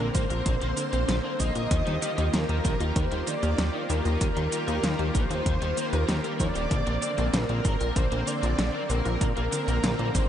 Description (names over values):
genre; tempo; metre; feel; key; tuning
synthwave; 96 BPM; 4/4; straight; unclear; A4 = 440 Hz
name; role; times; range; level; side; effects
wide unison lead; melody; 0.0-10.3 s; Bb4 to Eb5; -32 LUFS; equal; tape echo
string machine, violins; second line; 0.0-10.3 s; Bb4 to Eb5; -38 LUFS; equal; ensemble chorus, vintage 12-bit sampler grit, tape echo
soft supersaw; sustained chords; 0.0-10.3 s; D3 to G4; -33 LUFS; equal; vintage 12-bit sampler grit, sidechain pumping
wide unison pluck; arpeggios; 0.0-10.3 s; D3 to F4; -37 LUFS; left 1 dB; none
overdriven electric guitar; riff; 0.0-10.2 s; Eb3 to Bb4; -37 LUFS; left 2 dB; ensemble chorus, tape echo
chorused synth bass; bass; 0.0-10.3 s; Eb1 to Eb2; -28 LUFS; equal; none
electronic kick drum; drums; 0.1-10.3 s; none; -28 LUFS; equal; overdrive
pop drum kit; drums; 0.1-10.3 s; cabasa, hi-hat, snare drum; -33 LUFS; right 1 dB; overdrive
room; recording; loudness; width
moderate huge ambient reverb, RT60 8.1 s; dreamy mix soaked in reverb, nothing above 10.4 kHz; -24 LUFS; side -10 dB against mid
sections
0.0-10.3 A section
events
none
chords
0.0 Bbadd9; 1.7 Ebadd9; 6.7 Bbadd9